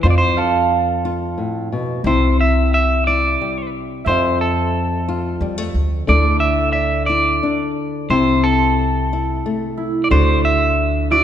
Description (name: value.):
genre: folk.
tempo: 90 BPM.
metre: 3/4.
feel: straight.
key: unclear.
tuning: A4 = 440 Hz.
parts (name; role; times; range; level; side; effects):
clean electric guitar; melody; 0.0-11.2 s; A4 to E5; -19 LUFS; right 1 dB; harmonic tremolo.
nylon-string guitar; accompaniment; 0.0-11.2 s; F2 to F#4; -21 LUFS; left 3 dB; none.
upright bass; bass; 0.0-11.2 s; C2 to F2; -19 LUFS; equal; none.
concert harp; arpeggios; 0.4-11.2 s; E4 to F5; -23 LUFS; right 7 dB; none.
room: wet scoring stage reverb, RT60 1.8 s.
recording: recorded in a church or concert hall.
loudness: -15 LUFS.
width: side -9 dB against mid.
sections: 0.0-11.2 A section.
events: none.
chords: 0.0 F; 2.0 C; 4.1 F; 6.1 Dsus2; 8.1 Am/C; 10.1 D7.